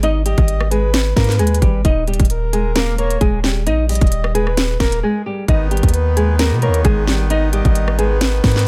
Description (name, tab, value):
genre	hip hop, trap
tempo	132 BPM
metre	4/4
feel	half-time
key	G# harmonic minor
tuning	A4 = 440 Hz
part	nylon-string guitar	melody	0.0-8.6 s	G3 to D#5	-23 LUFS	equal	low-pass filter
part	long sustained 808-style bass	bass	0.0-8.7 s	D#1 to B2	-20 LUFS	equal	none
part	trap drum kit	drums	0.0-8.7 s	hi-hat, kick drum, rim click, snare drum	-19 LUFS	equal	none
part	breathy flute-like synth lead	second line	0.3-8.7 s	A#4 to D#5	-28 LUFS	equal	chorus, delay
part	accordion	sustained chords	5.5-8.7 s	D#3 to B3	-28 LUFS	equal	none
room	digital ambience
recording	faint mains hum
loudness	-16 LUFS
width	mono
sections	0.0-8.7 A section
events	break 5.0-5.5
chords	0.0 G#m; 1.8 D#; 5.5 G#madd9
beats	| 0.03 0.48 0.94 1.39 | 1.85 2.30 2.76 3.21 | 3.67 4.12 4.58 5.03 | 5.48 5.94 6.39 6.85 | 7.30 7.76 8.21 8.67